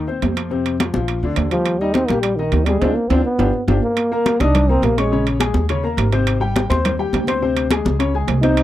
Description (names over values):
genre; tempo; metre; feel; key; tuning
Afro-Cuban jazz; 208 BPM; 4/4; straight; Eb major, C minor from 4.0 s; A4 = 440 Hz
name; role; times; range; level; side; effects
clear upright piano; accompaniment; 0.0-8.6 s; C3 to Eb6; -21 LUFS; left 4 dB; none
upright bass; bass; 0.0-8.6 s; G1 to F2; -20 LUFS; equal; none
congas; percussion; 0.1-8.6 s; none; -23 LUFS; left 1 dB; none
timbales; percussion; 0.2-8.6 s; none; -26 LUFS; right 9 dB; none
breathy trombone; melody; 1.5-5.3, 8.4-8.6 s; Eb3 to Eb4; -18 LUFS; right 1 dB; none
room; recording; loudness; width
light reverb; dry, close 1970s-style studio recording; -16 LUFS; side -13 dB against mid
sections
0.0-4.0 A section; 4.0-8.6 B section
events
band accent 2.8-4.0; drum fill 3.2-4.0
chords
0.0 Ab (rootless); 0.5 F5; 1.1 Bb; 1.7 Ebmaj7; 2.8 Dm7b5; 3.4 G7; 4.0 Cm7; 5.1 Bbm7; 5.7 Eb5; 6.3 Abmaj7; 7.4 Abadd11; 8.0 Db5